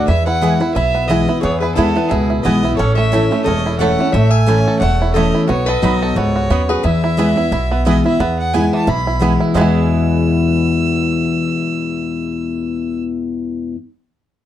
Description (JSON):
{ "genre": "bluegrass", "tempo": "177 BPM", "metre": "4/4", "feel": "swing 56% on 8ths", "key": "E major", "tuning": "A4 = 442 Hz", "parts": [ { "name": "clear fiddle", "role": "melody", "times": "0.0-13.0 s", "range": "G#4 to E6", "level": "-22 LUFS", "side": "right 1 dB", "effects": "none" }, { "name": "lap resonator guitar", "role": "second line", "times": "0.0-7.8 s", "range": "E4 to E5", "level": "-24 LUFS", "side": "left 3 dB", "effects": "none" }, { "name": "picked steel-string acoustic guitar", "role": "accompaniment", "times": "0.0-13.8 s", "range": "E2 to F#4", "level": "-17 LUFS", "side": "left 2 dB", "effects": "none" }, { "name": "bluegrass banjo", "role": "arpeggios", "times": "0.0-13.7 s", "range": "E3 to A4", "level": "-21 LUFS", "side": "right 4 dB", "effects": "none" }, { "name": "upright bass", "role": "bass", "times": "0.0-13.7 s", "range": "E1 to E2", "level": "-19 LUFS", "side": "equal", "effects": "none" }, { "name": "mandolin", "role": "stabs", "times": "0.4-13.8 s", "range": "A3 to B5", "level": "-25 LUFS", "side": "right 8 dB", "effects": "none" } ], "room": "moderate studio ambience, RT60 0.5 s", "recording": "dark, warm production", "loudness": "-13 LUFS", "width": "side -11 dB against mid", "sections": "0.0-8.2 A section; 8.2-9.6 B section; 9.6-12.3 C section", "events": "none", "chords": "0.1 E; 2.8 A; 5.5 B; 6.8 E" }